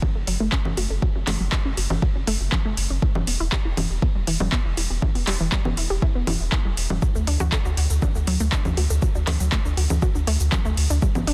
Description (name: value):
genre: melodic techno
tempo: 120 BPM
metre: 4/4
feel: straight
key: unclear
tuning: A4 = 440 Hz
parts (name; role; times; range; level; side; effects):
- unison pluck; arpeggios; 0.0-11.3 s; E3 to A4; -32 LUFS; equal; sidechain pumping, delay
- deep house drum kit; drums; 0.0-11.3 s; congas, handclaps, hi-hat, shaker; -29 LUFS; equal; overdrive, sidechain pumping on cymbals, sidechain pumping on hats, sidechain pumping on perc
- electronic kick drum; drums; 0.0-11.1 s; none; -25 LUFS; equal; overdrive
- round analog bass; bass; 0.2-11.3 s; E1 to D2; -26 LUFS; equal; sidechain pumping
room: digital ambience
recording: dense, heavily limited modern master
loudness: -22 LUFS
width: mono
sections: 0.0-11.3 A section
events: filter sweep on synth arpeggio sound 0.0-11.3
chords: 0.0 F#m; 3.0 Em; 7.0 D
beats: 0.02 0.52 | 1.02 1.52 2.02 2.52 | 3.02 3.52 4.02 4.52 | 5.02 5.52 6.02 6.52 | 7.02 7.52 8.02 8.52 | 9.02 9.52 10.02 10.52 | 11.02